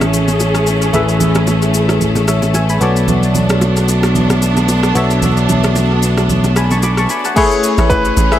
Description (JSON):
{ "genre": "amapiano", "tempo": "112 BPM", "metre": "4/4", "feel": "swing 55% on 16ths", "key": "A major", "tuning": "A4 = 440 Hz", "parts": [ { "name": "barking FM electric piano", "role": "accompaniment", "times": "0.0-8.4 s", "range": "A3 to D6", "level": "-18 LUFS", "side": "left 3 dB", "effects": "chorus, low-pass filter, tape echo" }, { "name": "clear studio string section", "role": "sustained chords", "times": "0.0-8.4 s", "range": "A3 to G#4", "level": "-18 LUFS", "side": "equal", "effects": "sidechain pumping, low-pass filter" }, { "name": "overdriven picked electric bass", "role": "bass", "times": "0.0-7.1 s", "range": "A1 to B1", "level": "-14 LUFS", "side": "equal", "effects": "none" }, { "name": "deep house drum kit", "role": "drums", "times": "0.0-8.4 s", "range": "crash cymbal, kick drum, rim click, shaker", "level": "-22 LUFS", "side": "equal", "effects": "overdrive, tape echo" }, { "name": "bongos and congas", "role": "percussion", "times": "0.0-7.0 s", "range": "none", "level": "-22 LUFS", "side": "right 3 dB", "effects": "none" }, { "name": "warm grand piano", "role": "melody", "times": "7.4-8.4 s", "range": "G#4 to B4", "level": "-16 LUFS", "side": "equal", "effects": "tape echo" }, { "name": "tight log drum bass", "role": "bass", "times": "7.8-8.4 s", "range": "A1", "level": "-14 LUFS", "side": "right 1 dB", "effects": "none" } ], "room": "light reverb, digital ambience", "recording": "echo-heavy mix", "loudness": "-11 LUFS", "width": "side -12 dB against mid", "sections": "0.0-7.4 A section; 7.4-8.4 B section", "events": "drop 7.4-8.4", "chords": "0.0 Amaj9; 2.8 Bm9; 7.4 Amaj9", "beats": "0.40 | 0.94 1.47 2.01 2.54 | 3.08 3.62 4.15 4.69 | 5.22 5.76 6.29 6.83 | 7.37 7.90" }